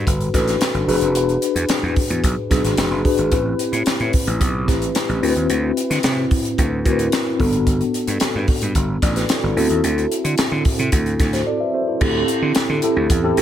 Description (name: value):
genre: polished 1980s jazz-funk pop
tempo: 111 BPM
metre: 4/4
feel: straight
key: unclear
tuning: A4 = 444 Hz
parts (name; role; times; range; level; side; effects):
- mellow tine electric piano; accompaniment; 0.0-13.4 s; B3 to E5; -20 LUFS; left 1 dB; medium stereo tremolo, lush chorus
- gritty slap bass; bass; 0.0-13.4 s; E1 to D3; -22 LUFS; right 1 dB; overdrive
- crisp fusion drum kit; drums; 0.1-13.4 s; crash cymbal, hi-hat, kick drum, snare drum; -21 LUFS; equal; gated reverb
room: light reverb, studio ambience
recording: none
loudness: -16 LUFS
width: side -10 dB against mid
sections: 0.0-12.0 A section; 12.0-13.4 B section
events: break 11.5-12.0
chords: 0.0 Gmaj9; 0.9 E9; 3.3 Am7; 5.2 D13; 7.4 Gmaj9; 9.6 D9; 12.0 D9sus4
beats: 0.07 0.61 | 1.16 1.70 2.24 2.78 | 3.32 3.87 4.41 4.95 | 5.49 6.04 6.58 7.12 | 7.67 8.21 8.75 9.29 | 9.84 10.38 10.92 11.47 | 12.01 12.55 13.09